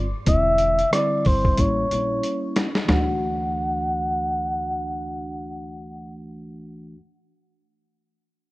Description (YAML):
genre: hip hop, jazz-hop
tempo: 92 BPM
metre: 4/4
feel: swing 59% on 16ths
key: unclear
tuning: A4 = 441 Hz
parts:
  - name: mellow tine electric piano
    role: accompaniment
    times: 0.0-7.0 s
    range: D3 to F#4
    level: -28 LUFS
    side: equal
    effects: phaser, low-pass filter
  - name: upright bass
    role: bass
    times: 0.0-7.0 s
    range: E1 to D2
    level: -29 LUFS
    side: equal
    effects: none
  - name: trumpet with cup mute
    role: melody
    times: 0.3-6.3 s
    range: C5 to F#5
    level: -23 LUFS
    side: equal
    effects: low-pass filter
  - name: lo-fi sampler-style drum kit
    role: drums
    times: 0.3-3.1 s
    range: hi-hat, kick drum, rim click, snare drum, toms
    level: -22 LUFS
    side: equal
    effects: vintage 12-bit sampler grit
room: light reverb, small room ambience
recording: rough home demo mix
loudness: -20 LUFS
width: side -20 dB against mid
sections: 0.0-2.9 A section; 2.9-5.5 B section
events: filter sweep 0.0-2.9; drum fill 1.6-2.9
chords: 0.3 Cadd9/E; 1.6 A7b9; 2.9 D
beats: | 0.28 0.93 1.58 2.24 | 2.89 3.54 4.19 4.84